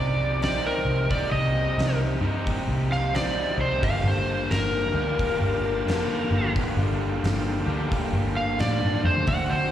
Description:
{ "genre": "blues rock power trio and southern rock", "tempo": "88 BPM", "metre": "4/4", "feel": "swing 63% on 8ths", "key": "G minor", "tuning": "A4 = 442 Hz", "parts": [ { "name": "overdriven slide guitar", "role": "melody", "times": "0.0-9.7 s", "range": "Bb4 to F#5", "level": "-27 LUFS", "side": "equal", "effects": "slapback echo" }, { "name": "overdriven tonewheel organ", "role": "sustained chords", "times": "0.0-9.7 s", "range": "Bb3 to A5", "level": "-37 LUFS", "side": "right 3 dB", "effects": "slow rotary speaker" }, { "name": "raw garage guitar", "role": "riff", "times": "0.0-9.7 s", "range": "G2 to G4", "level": "-28 LUFS", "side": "left 1 dB", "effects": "overdrive, slapback echo" }, { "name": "vintage muted picked electric bass", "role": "bass", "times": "0.0-9.7 s", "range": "F1 to A2", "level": "-26 LUFS", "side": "equal", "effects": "none" }, { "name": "oversized low-tuned drum kit", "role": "drums", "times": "0.4-9.5 s", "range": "hi-hat, kick drum, snare drum", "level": "-31 LUFS", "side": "equal", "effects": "none" } ], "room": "little or no reverb", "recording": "live gig heard through the venue's PA, recital hall reverb", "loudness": "-22 LUFS", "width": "side -11 dB against mid", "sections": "0.0-9.7 A section", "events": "electric slide guitar solo 0.0-9.7", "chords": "0.0 Cm9; 3.8 Gm9" }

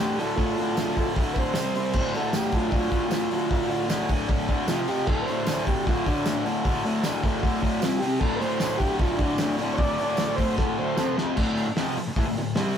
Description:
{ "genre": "garage rock duo or trio", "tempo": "153 BPM", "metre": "4/4", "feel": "straight", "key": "D minor", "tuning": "A4 = 440 Hz", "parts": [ { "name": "overdriven combo organ", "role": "melody", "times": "0.0-11.2 s", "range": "D4 to D5", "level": "-28 LUFS", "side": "right 2 dB", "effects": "none" }, { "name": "fuzz guitar", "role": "riff", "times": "0.0-12.8 s", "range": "D2 to C4", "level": "-26 LUFS", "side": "left 1 dB", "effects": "distortion" }, { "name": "cloth-damped thuddy drum kit", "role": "drums", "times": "0.2-12.8 s", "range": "crash cymbal, hi-hat, kick drum, snare drum", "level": "-27 LUFS", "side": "equal", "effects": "none" }, { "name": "tambourine", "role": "percussion", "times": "0.8-11.1 s", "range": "none", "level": "-42 LUFS", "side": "right 6 dB", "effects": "none" } ], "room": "light reverb", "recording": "rough rehearsal-room recording, warm saturation", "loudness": "-22 LUFS", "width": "side -8 dB against mid", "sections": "0.0-11.4 A section; 11.4-12.8 B section", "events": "transistor combo organ solo 0.0-11.4; drum fill 10.6-11.4", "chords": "0.0 Dm; 1.6 C5; 2.0 Dm; 4.7 F5; 5.1 D5; 7.8 C5; 8.2 D5; 11.0 F5; 11.4 Dm" }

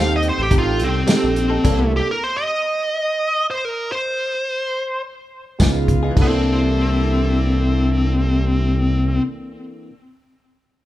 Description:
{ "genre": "straight-eighth soul blues", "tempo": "106 BPM", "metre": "4/4", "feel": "straight", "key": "C mixolydian", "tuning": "A4 = 440 Hz", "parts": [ { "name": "smooth overdriven lead guitar", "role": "melody", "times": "0.0-9.2 s", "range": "C4 to F5", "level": "-20 LUFS", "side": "equal", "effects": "tape echo" }, { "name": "bright tine electric piano", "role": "accompaniment", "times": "0.0-2.1, 5.6-9.9 s", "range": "Bb3 to C5", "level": "-26 LUFS", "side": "right 4 dB", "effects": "phaser" }, { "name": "brilliant horn section", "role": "sustained chords", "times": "0.0-2.1, 5.6-9.2 s", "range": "E4 to G5", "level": "-32 LUFS", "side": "left 1 dB", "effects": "none" }, { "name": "direct-recorded clean electric guitar", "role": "stabs", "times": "0.0-1.8, 5.6-10.0 s", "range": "E3 to A4", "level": "-28 LUFS", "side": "left 3 dB", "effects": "none" }, { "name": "smooth synth bass", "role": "bass", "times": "0.0-2.0, 5.6-9.2 s", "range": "A1 to Eb2", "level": "-20 LUFS", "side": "equal", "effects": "none" }, { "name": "warm soul drum kit", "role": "drums", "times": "0.2-1.8, 5.6-6.3 s", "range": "crash cymbal, hi-hat, kick drum, snare drum, tambourine", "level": "-18 LUFS", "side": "equal", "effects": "none" } ], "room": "light reverb", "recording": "band playing live in one room", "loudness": "-16 LUFS", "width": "side -14 dB against mid", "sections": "0.0-6.2 A section; 6.2-8.4 B section", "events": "stop 1.6-5.6", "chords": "0.0 F9; 1.6 C13; 5.6 Db9; 6.2 C13" }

